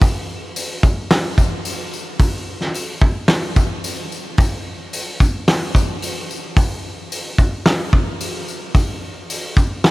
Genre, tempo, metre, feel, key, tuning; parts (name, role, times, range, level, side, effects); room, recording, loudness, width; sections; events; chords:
rock; 110 BPM; 4/4; straight
loose indie drum kit; drums; 0.0-9.9 s; hi-hat, kick drum, snare drum; -17 LUFS; equal
tambourine; percussion; 0.0-9.9 s; -34 LUFS; left 6 dB
light reverb, small room ambience; -17 LUFS; side -20 dB against mid
0.0-9.9 A section